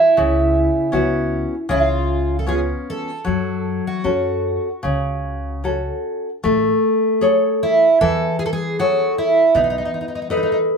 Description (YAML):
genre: fado-style ballad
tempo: 77 BPM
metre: 4/4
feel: uneven beats, rubato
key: F# minor, A major from 6.4 s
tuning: A4 = 440 Hz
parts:
  - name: fingerpicked twelve-string acoustic guitar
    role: melody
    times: 0.0-10.6 s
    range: D#4 to A4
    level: -18 LUFS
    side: right 3 dB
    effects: none
  - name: nylon-string guitar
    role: accompaniment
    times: 0.0-10.8 s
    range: C#3 to D#5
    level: -20 LUFS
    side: left 2 dB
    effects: none
  - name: upright bass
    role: bass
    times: 0.2-9.8 s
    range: A1 to F#2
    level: -24 LUFS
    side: equal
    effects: none
room: moderate studio ambience, RT60 0.5 s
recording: band playing live in one room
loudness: -16 LUFS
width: side -5 dB against mid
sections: 0.0-6.4 A section; 6.4-10.8 B section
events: none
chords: 0.2 C#7sus4; 1.7 C#7; 3.3 F#m; 6.4 Amaj7; 9.6 B7